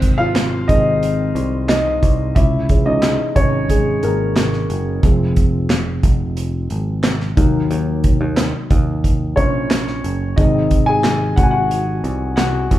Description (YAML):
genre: piano-driven pop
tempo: 90 BPM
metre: 4/4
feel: straight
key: Ab mixolydian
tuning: A4 = 439 Hz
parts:
  - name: dark upright piano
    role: accompaniment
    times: 0.0-12.8 s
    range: Eb3 to Ab5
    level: -19 LUFS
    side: left 1 dB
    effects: none
  - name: picked electric bass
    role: bass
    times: 0.0-12.8 s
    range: F1 to Eb2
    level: -21 LUFS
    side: right 1 dB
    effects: none
  - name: modern studio drum kit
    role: drums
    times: 0.0-12.8 s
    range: handclaps, hi-hat, kick drum, snare drum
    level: -17 LUFS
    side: equal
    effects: none
room: light reverb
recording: band playing live in one room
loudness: -14 LUFS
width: side -14 dB against mid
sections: 0.0-12.8 A section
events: upright piano solo 0.0-12.8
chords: 0.0 Ab; 2.4 Dbm; 5.0 Fm; 7.4 Ebm; 10.4 Ab